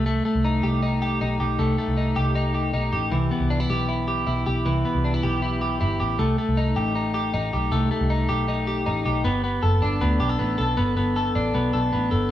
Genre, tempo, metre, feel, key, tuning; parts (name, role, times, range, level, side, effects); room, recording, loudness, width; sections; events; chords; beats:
jangly indie pop; 157 BPM; 4/4; straight; G major; A4 = 440 Hz
twelve-string electric guitar; arpeggios; 0.0-12.3 s; E3 to A4; -23 LUFS; left 1 dB
vintage muted picked electric bass; bass; 0.0-12.3 s; F#1 to D2; -24 LUFS; equal
wet studio reverb, RT60 0.6 s; band playing live in one room; -21 LUFS; side -12 dB against mid
0.0-9.3 A section; 9.3-12.3 B section
0.0 Cm6; 3.1 Cmaj7; 6.2 Cm6; 9.3 Gadd9
| 0.06 0.44 0.83 1.21 | 1.59 1.98 2.36 2.74 | 3.13 3.51 3.89 4.28 | 4.66 5.04 5.42 5.81 | 6.19 6.57 6.96 7.34 | 7.72 8.10 8.49 8.87 | 9.25 9.63 10.02 10.40 | 10.78 11.16 11.55 11.93